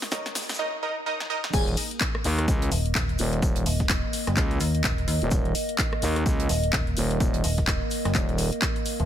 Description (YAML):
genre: bass house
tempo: 127 BPM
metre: 4/4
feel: swing 60% on 16ths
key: unclear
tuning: A4 = 440 Hz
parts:
  - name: deep reggae drum kit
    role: drums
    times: 0.0-9.0 s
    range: hi-hat, shaker, snare drum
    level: -39 LUFS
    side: right 1 dB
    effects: none
  - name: house drum kit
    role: drums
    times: 0.0-9.1 s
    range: crash cymbal, handclaps, hi-hat, rim click, snare drum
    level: -29 LUFS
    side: left 1 dB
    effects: none
  - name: tube shaker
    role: percussion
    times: 0.0-0.6 s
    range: none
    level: -38 LUFS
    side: left 4 dB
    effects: none
  - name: warbly tape-like pad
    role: texture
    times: 0.0-9.1 s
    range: Bb3 to Eb6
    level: -32 LUFS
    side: right 1 dB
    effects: chorus, built-in reverb, sidechain pumping
  - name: orchestra-hit-like synth stab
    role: stabs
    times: 0.1-1.4 s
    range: Eb4 to Eb5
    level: -31 LUFS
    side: right 2 dB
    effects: built-in reverb, sidechain pumping, ping-pong delay
  - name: electronic kick drum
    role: drums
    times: 0.1-8.7 s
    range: none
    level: -27 LUFS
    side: equal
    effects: none
  - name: swell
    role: sound effects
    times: 0.8-1.5 s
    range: none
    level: -44 LUFS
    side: left 2 dB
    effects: none
  - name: airy dreamy lead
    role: melody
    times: 1.5-1.6 s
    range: Ab4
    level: -36 LUFS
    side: left 1 dB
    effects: chorus, ping-pong delay
  - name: growling FM bass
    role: bass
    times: 1.5-8.5 s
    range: Eb1 to Eb2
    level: -26 LUFS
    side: equal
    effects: overdrive, sidechain pumping
  - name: metallic FM bass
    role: bass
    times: 2.7-9.1 s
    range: Eb1 to Eb2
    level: -26 LUFS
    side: equal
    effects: overdrive, sidechain pumping
room: light reverb, small room ambience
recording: high-pass filter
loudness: -23 LUFS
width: side -10 dB against mid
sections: 0.0-1.5 A section; 1.5-9.1 B section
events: build-up 0.0-1.5; drum fill 0.0-0.6, 1.2-1.5; filter sweep on synth stab 0.0-1.5; swell 0.8-1.5; drop 1.5-9.1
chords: 0.0 Eb5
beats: 0.12 0.59 1.06 | 1.53 2.01 2.48 2.95 | 3.42 3.90 4.37 4.84 | 5.31 5.79 6.26 6.73 | 7.20 7.68 8.15 8.62